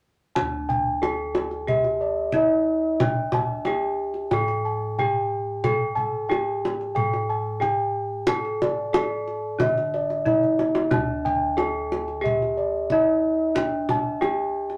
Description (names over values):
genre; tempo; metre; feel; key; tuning
Javanese gamelan; 91 BPM; 4/4; straight; unclear; A4 = 440 Hz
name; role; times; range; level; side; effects
gamelan-type bronze metallophone; melody; 0.4-14.8 s; D4 to A4-40c; -30 LUFS; equal; none
gamelan-type bossed gongs; arpeggios; 0.4-14.6 s; D5 to A5-40c; -27 LUFS; equal; none
gamelan-type bossed gongs; bass; 0.4-14.8 s; D2 to A4-40c; -36 LUFS; equal; none
kendang; percussion; 0.4-14.8 s; none; -29 LUFS; equal; none
room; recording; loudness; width
wet small room reverb, RT60 0.5 s; none; -24 LUFS; mono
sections
0.4-14.8 A section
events
drum fill 10.4-10.9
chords
none